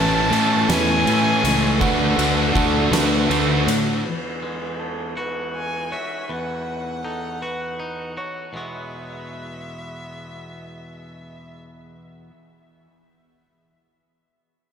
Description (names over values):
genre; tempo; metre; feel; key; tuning
post-rock; 53 BPM (dotted quarters); 6/8; straight; E major; A4 = 440 Hz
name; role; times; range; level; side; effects
rich violin; melody; 0.0-11.6 s; E5 to A5; -27 LUFS; equal; tape echo
rich studio string section; sustained chords; 0.0-4.0 s; D4 to C#6; -34 LUFS; left 1 dB; none
electric guitar through a small old amp; arpeggios; 0.0-9.4 s; E4 to C#5; -31 LUFS; right 3 dB; warbly pitch drift, tape echo
distorted electric guitar; riff; 0.0-4.0 s; A2 to F#4; -22 LUFS; right 11 dB; distortion
thick fuzz guitar; riff; 0.0-4.0 s; A2 to F#4; -23 LUFS; left 10 dB; distortion
fuzz fingered electric bass; bass; 0.0-4.0 s; A1 to A2; -23 LUFS; right 1 dB; overdrive
oversized low-tuned drum kit; drums; 0.3-3.9 s; kick drum, ride cymbal, snare drum; -26 LUFS; equal; none
twangy electric guitar; arpeggios; 4.0-12.3 s; E2 to F#4; -33 LUFS; left 1 dB; tape echo
room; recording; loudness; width
light reverb; none; -19 LUFS; side -7 dB against mid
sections
0.0-4.0 A section; 4.0-8.6 B section; 8.6-10.8 C section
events
none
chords
0.0 Amaj7; 1.8 Dmaj7; 4.0 Emaj9; 8.6 Eadd9